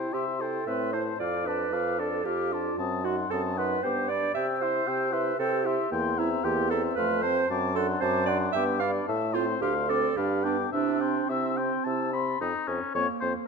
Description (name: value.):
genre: quick classical-period movement for wind quintet.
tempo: 114 BPM.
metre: 3/4.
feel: rubato.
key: C major.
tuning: A4 = 440 Hz.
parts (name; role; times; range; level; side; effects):
mellow hollow silver concert flute; melody; 0.0-13.3 s; G5 to E6; -34 LUFS; left 8 dB; none.
warm oboe; second line; 0.0-13.3 s; Db4 to B5; -32 LUFS; left 6 dB; none.
mellow French horn; accompaniment; 0.0-13.3 s; A3 to G4; -35 LUFS; left 1 dB; none.
warm clarinet; accompaniment; 0.0-13.5 s; Bb3 to F5; -30 LUFS; right 8 dB; none.
warm bassoon; bass; 0.0-13.3 s; D2 to C3; -31 LUFS; right 1 dB; none.
room: moderate scoring stage reverb, RT60 1.5 s.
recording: none.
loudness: -25 LUFS.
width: side -5 dB against mid.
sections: 0.0-12.4 A section; 12.4-13.5 B section.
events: none.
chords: 0.0 C; 0.7 Am; 1.2 Dm/F; 2.8 F#dim7; 3.8 G; 4.4 C; 5.9 C7/E; 7.0 F; 7.5 D7/F#; 8.6 G; 9.1 Am; 9.6 Dm7; 10.2 G7; 10.7 C; 12.4 F5.